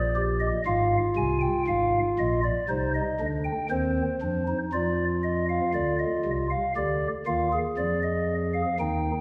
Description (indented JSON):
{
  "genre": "classical, baroque-style 3-part fugue for pipe organ",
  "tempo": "59 BPM",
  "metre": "4/4",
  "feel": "straight",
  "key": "F minor",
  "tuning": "A4 = 441 Hz",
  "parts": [
    { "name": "pipe organ, stopped flute", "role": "solo", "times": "0.0-9.2 s", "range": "Ab1 to Ab5", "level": "-26 LUFS", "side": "equal", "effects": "none" }
  ],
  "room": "wet scoring stage reverb, RT60 1.7 s",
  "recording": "heard from further back in the room",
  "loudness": "-26 LUFS",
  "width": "mono",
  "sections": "0.0-4.7 A section; 4.7-9.2 B section",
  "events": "none",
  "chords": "0.0 Cm (rootless); 0.7 Fm/Ab; 2.7 Cm; 4.7 F5; 6.8 Fm13/D"
}